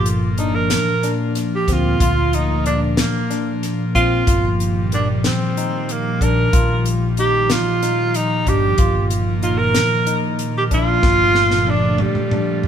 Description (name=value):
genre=progressive instrumental, band music in an uneven meter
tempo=186 BPM (eighths)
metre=7/8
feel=straight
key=G minor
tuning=A4 = 439 Hz
part: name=breathy tenor saxophone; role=melody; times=0.0-12.7 s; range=G3 to Bb4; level=-20 LUFS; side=right 2 dB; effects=none
part: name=airy breathy pad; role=accompaniment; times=0.0-12.7 s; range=Bb2 to Bb3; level=-22 LUFS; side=equal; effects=chorus
part: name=barky tine electric piano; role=arpeggios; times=0.0-12.7 s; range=Eb3 to F4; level=-26 LUFS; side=left 4 dB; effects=overdrive, tape echo
part: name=hollow-body short-scale fingered electric bass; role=bass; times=0.0-12.0 s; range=G1 to D2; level=-21 LUFS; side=equal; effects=none
part: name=damped 70s drum kit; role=drums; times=0.1-12.7 s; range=hi-hat, kick drum, snare drum, toms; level=-21 LUFS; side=equal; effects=none
room=wet stone room reverb, RT60 1.3 s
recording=band playing live in one room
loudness=-15 LUFS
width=side -8 dB against mid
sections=0.0-12.7 A section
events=drum fill 11.0-12.7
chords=0.0 Gm7; 4.3 Ebadd9/G; 11.0 Gm7